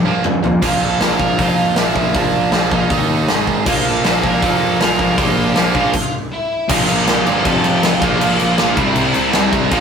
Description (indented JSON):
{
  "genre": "punk rock",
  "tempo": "158 BPM",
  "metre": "4/4",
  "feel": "straight",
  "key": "unclear",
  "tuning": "A4 = 441 Hz",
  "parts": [
    { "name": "distorted electric guitar", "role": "riff", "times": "0.0-9.8 s", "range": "F2 to Eb4", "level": "-18 LUFS", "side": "right 6 dB", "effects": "overdrive" },
    { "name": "sludgy distorted guitar", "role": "riff", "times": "0.0-9.8 s", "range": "F2 to Eb4", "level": "-21 LUFS", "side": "left 5 dB", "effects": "overdrive" },
    { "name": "fuzz picked electric bass", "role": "bass", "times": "0.0-9.8 s", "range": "F1 to Bb2", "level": "-23 LUFS", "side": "left 1 dB", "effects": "overdrive" },
    { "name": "big rock drum kit", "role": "drums", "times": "0.2-9.8 s", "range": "crash cymbal, hi-hat, kick drum, snare drum, toms", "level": "-18 LUFS", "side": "left 1 dB", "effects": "none" },
    { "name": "high-gain lead guitar", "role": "melody", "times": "0.6-9.8 s", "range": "D4 to Bb5", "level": "-23 LUFS", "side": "equal", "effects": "distortion" },
    { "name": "distorted electric guitar", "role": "riff", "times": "3.7-9.8 s", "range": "F2 to C4", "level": "-22 LUFS", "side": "left 1 dB", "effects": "overdrive" }
  ],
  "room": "moderate studio reverb, RT60 0.6 s",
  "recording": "rough rehearsal-room recording, warm saturation",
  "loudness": "-13 LUFS",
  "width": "side -6 dB against mid",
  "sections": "0.6-6.7 A section; 6.7-9.8 B section",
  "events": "drum fill 0.0-0.6; stop 5.9-6.7",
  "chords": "0.0 Bb5; 0.6 Bb; 2.9 Eb5; 3.3 Ab5; 3.7 Bb5; 6.3 N.C.; 6.7 Bb5; 7.5 F; 8.0 Bb5; 8.8 C",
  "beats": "0.24 | 0.63 1.01 1.39 1.77 | 2.15 2.53 2.91 3.29 | 3.67 4.05 4.42 4.80 | 5.18 5.56 5.94 6.32 | 6.70 7.08 7.45 7.83 | 8.21 8.59 8.96 9.34 | 9.72"
}